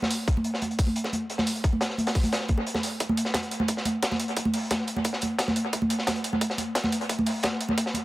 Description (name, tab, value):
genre	drum and bass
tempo	176 BPM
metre	4/4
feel	straight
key	none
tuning	none
part	crunchy breakbeat drum kit	drums	0.0-8.0 s	hi-hat, snare drum	-30 LUFS	equal	high-pass filter on hats, high-pass filter on snare, high-pass filter on room, dub echo
part	congas and bongos	percussion	0.0-8.0 s	none	-27 LUFS	right 1 dB	dub echo
part	electronic hi-hat	drums	0.1-8.0 s	none	-34 LUFS	right 2 dB	none
part	electronic kick drum	drums	0.3-7.8 s	none	-26 LUFS	equal	high-pass filter on kick
room	moderate spring reverb, RT60 1.4 s, small room ambience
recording	echo-heavy mix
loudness	-24 LUFS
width	side -17 dB against mid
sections	0.0-3.0 A section; 3.0-8.0 B section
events	build-up 3.0-8.0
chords	none